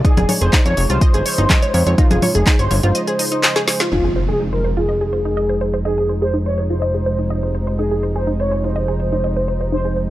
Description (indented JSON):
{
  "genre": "melodic techno",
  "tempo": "124 BPM",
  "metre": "4/4",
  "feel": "straight",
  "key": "F minor",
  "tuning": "A4 = 440 Hz",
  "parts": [
    { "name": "expressive synth lead", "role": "melody", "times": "0.0-10.0 s", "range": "F4 to Db5", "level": "-22 LUFS", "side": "equal", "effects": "ensemble chorus, sidechain pumping, analog delay" },
    { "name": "warm analog pad", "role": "sustained chords", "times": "0.0-10.1 s", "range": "C3 to Eb4", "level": "-26 LUFS", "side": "right 1 dB", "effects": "chorus, sidechain pumping" },
    { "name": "wide unison pluck", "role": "arpeggios", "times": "0.0-10.0 s", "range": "Eb4 to Eb5", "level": "-24 LUFS", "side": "right 1 dB", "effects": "flanger, sidechain pumping, tape echo" },
    { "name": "deep house drum kit", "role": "drums", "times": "0.0-3.9 s", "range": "congas, handclaps, hi-hat, snare drum", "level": "-18 LUFS", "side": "left 1 dB", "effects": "none" },
    { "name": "electronic kick drum", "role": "drums", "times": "0.0-2.6 s", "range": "none", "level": "-14 LUFS", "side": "equal", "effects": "none" },
    { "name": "fat analog bass", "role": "bass", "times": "0.2-10.1 s", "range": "F1 to F2", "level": "-20 LUFS", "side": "equal", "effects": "sidechain pumping" },
    { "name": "impact", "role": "sound effects", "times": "3.9-5.9 s", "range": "none", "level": "-26 LUFS", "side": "equal", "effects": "none" }
  ],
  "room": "light reverb",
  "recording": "dry, gritty hardware recording",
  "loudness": "-15 LUFS",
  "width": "side -15 dB against mid",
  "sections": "0.0-3.9 A section; 3.9-10.1 B section",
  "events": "break 3.0-3.9; drum fill 3.4-3.9; band accent 3.8; impact 3.9-5.9; filter sweep on synth arpeggio sound 3.9-10.1",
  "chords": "0.0 Dbadd9/F; 3.9 Fm7"
}